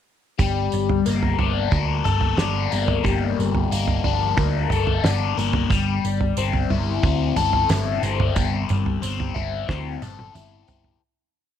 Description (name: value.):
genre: psychedelic rock.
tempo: 90 BPM.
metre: 4/4.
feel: straight.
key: G dorian.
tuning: A4 = 440 Hz.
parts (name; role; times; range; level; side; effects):
biting overdriven guitar; riff; 0.4-11.0 s; G3 to A4; -23 LUFS; left 9 dB; phaser.
hollow-body short-scale picked electric bass; bass; 0.4-11.0 s; G1 to D2; -24 LUFS; right 2 dB; none.
damped 70s drum kit; drums; 0.4-11.0 s; kick drum, snare drum, toms; -24 LUFS; right 2 dB; none.
tambourine; percussion; 0.4-10.8 s; none; -38 LUFS; right 15 dB; none.
room: studio ambience.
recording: 1960s-style stereo with parts hard left and right.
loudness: -19 LUFS.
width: side -9 dB against mid.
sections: 0.4-11.0 groove.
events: fade-out 8.4-11.0; drum fill 9.7-11.0.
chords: 0.4 Gmadd9; 5.7 Am/G.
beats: | 0.40 1.06 1.73 2.39 | 3.05 3.72 4.38 5.04 | 5.71 6.37 7.04 7.70 | 8.36 9.02 9.69 10.35.